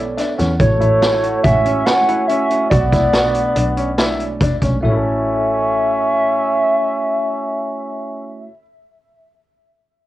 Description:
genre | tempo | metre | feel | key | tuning
progressive instrumental, band music in an uneven meter | 142 BPM | 5/4 | straight | A major | A4 = 441 Hz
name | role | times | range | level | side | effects
bell-like tine electric piano | accompaniment | 0.0-8.5 s | B2 to F#5 | -26 LUFS | right 4 dB | cassette tape
clear double bass | bass | 0.0-8.5 s | A1 to E2 | -20 LUFS | equal | none
warm baby grand piano | arpeggios | 0.2-8.6 s | A3 to A4 | -24 LUFS | left 3 dB | cassette tape, tape echo
street-band drum kit | drums | 0.2-4.7 s | hi-hat, kick drum, snare drum | -19 LUFS | equal | none
hollow square lead | melody | 0.6-8.5 s | C#5 to F#5 | -18 LUFS | equal | chorus, cassette tape, tape echo
warm flugelhorn | second line | 0.6-8.5 s | A3 to C#4 | -22 LUFS | right 1 dB | cassette tape
room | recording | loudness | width
light reverb | home recording on cassette | -14 LUFS | side -15 dB against mid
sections
0.0-4.8 A section; 4.8-9.1 B section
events
tine electric piano fill 0.0-0.6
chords
0.0 Bm9; 0.6 A6; 2.7 Bm7; 4.8 A6

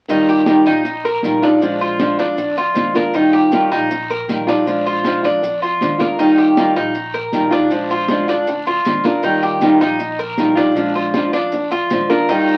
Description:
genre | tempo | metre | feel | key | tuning
latin, Cuban son and guajira | 158 BPM | 4/4 | straight | Eb major | A4 = 440 Hz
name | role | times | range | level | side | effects
nylon-string guitar | accompaniment | 0.1-12.6 s | Eb3 to F4 | -18 LUFS | equal | none
Cuban tres | arpeggios | 0.1-12.6 s | D4 to Bb4 | -21 LUFS | equal | none
upright bass | bass | 0.1-12.6 s | Bb1 to F2 | -38 LUFS | equal | none
congas | percussion | 0.1-12.6 s | none | -26 LUFS | equal | none
guiro | percussion | 0.1-12.6 s | none | -36 LUFS | equal | none
maracas | percussion | 0.1-12.6 s | none | -43 LUFS | equal | none
room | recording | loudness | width
moderate small room reverb, RT60 0.5 s | very old 78 rpm record, vinyl crackle | -16 LUFS | mono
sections
0.1-12.3 A section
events
none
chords
0.1 Ebadd9; 1.6 Bb7; 3.1 Ebadd9; 4.7 Bb7; 6.2 Ebadd9; 7.7 Bb7; 9.2 Ebadd9; 10.8 Bb7

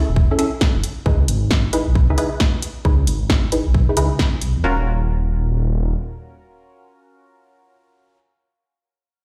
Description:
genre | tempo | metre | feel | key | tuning
UK garage, two-step garage | 134 BPM | 4/4 | swing 66% on 16ths | Eb minor | A4 = 440 Hz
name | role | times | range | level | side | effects
punchy chord stab | stabs | 0.0-8.2 s | Db4 to Cb5 | -26 LUFS | equal | chorus, dub echo
dark detuned saw bass | bass | 0.0-5.9 s | Eb1 to Fb2 | -21 LUFS | equal | tube saturation
electronic kick drum | drums | 0.2-4.3 s | none | -20 LUFS | equal | none
punchy analog drum machine | drums | 0.4-4.5 s | hi-hat, snare drum | -25 LUFS | equal | overdrive
room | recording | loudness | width
light reverb | played on a big sound system in a bare room, stone room reverb | -19 LUFS | mono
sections
0.0-4.6 A section; 4.6-8.2 B section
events
none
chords
0.0 Gbm7 (rootless); 0.8 Dbm7; 4.6 Ebm7

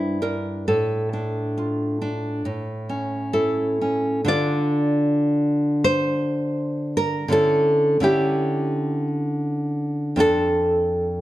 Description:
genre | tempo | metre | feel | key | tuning
romantic piece for solo classical guitar | 58-86 BPM | 4/4 | rubato | D minor | A4 = 440 Hz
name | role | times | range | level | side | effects
nylon-string guitar | solo | 0.0-11.2 s | F2 to D5 | -20 LUFS | equal | none
room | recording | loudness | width
moderate recital hall reverb, RT60 1.5 s | close, detailed microphones | -20 LUFS | side -15 dB against mid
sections
0.0-4.3 A section; 4.3-11.2 A section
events
none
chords
0.0 Gmadd11; 0.7 Dm/A; 2.5 A; 4.3 Dm; 7.3 C#dim/D; 10.2 Dm/F

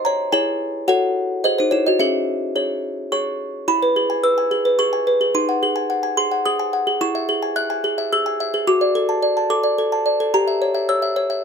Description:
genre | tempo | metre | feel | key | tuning
classical, lullaby for music box | 108 BPM | 3/4 | straight | C# minor | A4 = 440 Hz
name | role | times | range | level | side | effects
music box | solo | 0.0-11.4 s | C#4 to F#6 | -17 LUFS | equal | none
room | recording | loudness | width
light reverb | close, detailed microphones | -17 LUFS | side -6 dB against mid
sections
0.0-3.7 A section; 3.7-11.4 B section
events
none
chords
0.3 C#m/E; 0.9 F#m; 1.4 G#; 2.0 C#m; 3.7 E; 5.3 G#7/D#; 7.0 C#m/E; 8.7 D/F#; 10.3 Gdim7

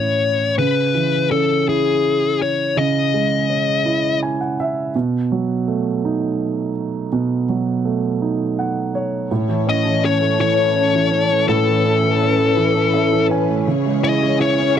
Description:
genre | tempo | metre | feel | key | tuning
six-eight pop ballad | 55 BPM (dotted quarters) | 6/8 | straight | unclear | A4 = 442 Hz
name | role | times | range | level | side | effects
fuzz lead guitar | melody | 0.0-4.2, 9.7-14.7 s | G#4 to D#5 | -18 LUFS | left 6 dB | distortion
warm grand piano | accompaniment | 0.0-14.8 s | A2 to G#5 | -18 LUFS | right 4 dB | none
warm studio string section | sustained chords | 9.3-14.8 s | E3 to C#5 | -22 LUFS | left 8 dB | none
room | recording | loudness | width
little or no reverb | dry, close 1970s-style studio recording | -16 LUFS | side -9 dB against mid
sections
0.0-9.3 A section; 9.3-14.8 B section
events
grand piano fill 3.9-4.9, 8.2-9.3, 12.6-13.7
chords
0.0 A; 0.6 C#madd9; 4.9 B7; 9.3 A; 13.7 C#madd9

